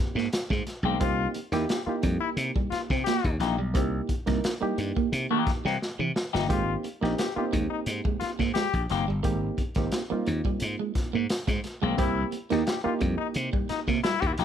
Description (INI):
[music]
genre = funk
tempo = 88 BPM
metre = 4/4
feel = straight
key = unclear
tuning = A4 = 441 Hz
[part]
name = reed electric piano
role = stabs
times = 0.0-13.9 s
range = Bb3 to Bb4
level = -32 LUFS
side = right 4 dB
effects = none
[part]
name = electric guitar at the edge of break-up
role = riff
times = 0.2-14.4 s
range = E3 to C4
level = -32 LUFS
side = right 7 dB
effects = none
[part]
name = slap bass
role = bass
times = 0.2-14.4 s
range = Gb1 to C3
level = -29 LUFS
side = equal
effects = none
[part]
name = crunchy breakbeat drum kit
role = drums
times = 0.2-14.4 s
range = hi-hat, kick drum, snare drum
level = -30 LUFS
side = equal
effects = none
[part]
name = semi-hollow electric guitar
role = accompaniment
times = 0.8-14.4 s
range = Eb3 to G4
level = -28 LUFS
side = left 9 dB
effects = phaser
[part]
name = bright trombone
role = second line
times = 1.0-14.3 s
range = Eb4 to G4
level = -31 LUFS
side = left 8 dB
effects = none
[sound]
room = light reverb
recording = none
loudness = -25 LUFS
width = side -9 dB against mid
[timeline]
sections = 0.0-14.4 A section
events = drum fill 5.8-6.5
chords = 0.0 Abmaj9; 1.0 C7#9; 6.5 Abmaj9; 12.0 C7#9